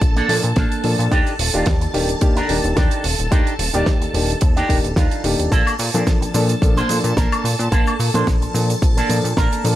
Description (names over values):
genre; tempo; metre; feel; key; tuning
nu-disco, nu disco; 109 BPM; 4/4; swing 54% on 16ths; Bb major; A4 = 440 Hz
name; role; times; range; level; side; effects
string machine, full ensemble; sustained chords; 0.0-9.8 s; A5; -28 LUFS; equal; ensemble chorus, sidechain pumping
chorused synth bass; bass; 0.0-9.8 s; Eb1 to Bb2; -22 LUFS; equal; none
damped 70s drum kit; drums; 0.0-9.8 s; hi-hat, shaker, snare drum, woodblock; -24 LUFS; right 2 dB; studio reverb
electronic kick drum; drums; 0.0-9.5 s; none; -17 LUFS; equal; studio reverb
electric guitar with an envelope filter; riff; 0.2-9.7 s; Bb3 to C5; -23 LUFS; right 2 dB; lush chorus, slapback echo
dark grand piano; accompaniment; 0.3-9.8 s; Eb3 to D5; -23 LUFS; left 2 dB; sidechain pumping, slapback echo
room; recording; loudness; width
small room ambience; faint mains hum; -15 LUFS; side -14 dB against mid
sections
0.0-9.8 A section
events
none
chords
0.0 Bbmaj7; 1.1 Ebmaj7; 5.5 Bbmaj7